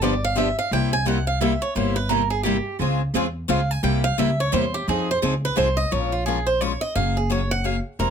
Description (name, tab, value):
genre	acoustic string swing (jazz manouche)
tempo	173 BPM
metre	3/4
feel	swing 60% on 8ths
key	F harmonic minor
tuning	A4 = 441 Hz
part	picked swing-style acoustic guitar	melody	0.0-8.1 s	F4 to Ab5	-24 LUFS	right 3 dB	none
part	picked steel-string acoustic guitar	accompaniment	0.0-8.1 s	C3 to Bb4	-26 LUFS	left 10 dB	none
part	picked steel-string acoustic guitar	accompaniment	0.0-5.7 s	C3 to Ab4	-27 LUFS	right 10 dB	none
part	upright bass	bass	0.0-8.1 s	E1 to F2	-25 LUFS	equal	none
room	light reverb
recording	close, detailed microphones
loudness	-20 LUFS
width	side -7 dB against mid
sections	0.0-5.9 A section; 5.9-8.1 A section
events	steel-string acoustic guitar solo 0.0-8.1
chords	0.0 G7; 0.7 C7; 2.8 Dbmaj7; 3.8 C7; 4.9 Fm7; 5.9 Bbm7; 7.0 Gbadd9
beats	0.02 0.37 | 0.72 1.06 1.41 | 1.76 2.10 2.45 | 2.80 3.14 3.49 | 3.83 4.18 4.53 | 4.87 5.22 5.57 | 5.91 6.26 6.61 | 6.95 7.30 7.65 | 7.99